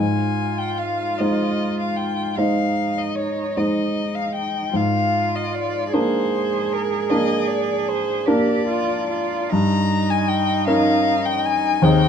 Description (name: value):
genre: classical, slow romantic movement for piano trio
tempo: 51 BPM (dotted quarters)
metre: 12/8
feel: rubato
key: Ab major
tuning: A4 = 439 Hz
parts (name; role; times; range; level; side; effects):
- warm violin; melody; 0.0-12.1 s; Bb4 to Bb5; -24 LUFS; left 5 dB; none
- rich cello; second line; 0.0-12.1 s; Eb4 to Ab4; -25 LUFS; right 8 dB; none
- clear grand piano; accompaniment; 0.0-12.1 s; Eb2 to C5; -21 LUFS; equal; none
room: moderate studio reverb, RT60 0.6 s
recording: dark, warm production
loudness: -18 LUFS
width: side -7 dB against mid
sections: 0.0-12.1 A section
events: none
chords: 0.0 Ab; 4.7 Bb7/Ab; 9.5 Eb7/G